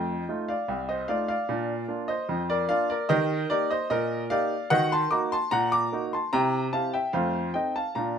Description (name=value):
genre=ragtime piano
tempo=74 BPM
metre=2/4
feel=straight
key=unclear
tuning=A4 = 440 Hz
part: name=clear grand piano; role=solo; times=0.0-8.2 s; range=C2 to D6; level=-24 LUFS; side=equal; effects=none
room=moderate studio reverb, RT60 0.6 s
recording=minimal, uncompressed stereo recording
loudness=-24 LUFS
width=side -7 dB against mid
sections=0.0-8.2 A section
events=none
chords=0.0 F7; 1.5 Bb; 3.1 Eb; 4.7 Ebm; 6.3 C7; 7.1 F7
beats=0.68 | 1.48 2.29 | 3.09 3.90 | 4.71 5.51 | 6.32 7.13 | 7.95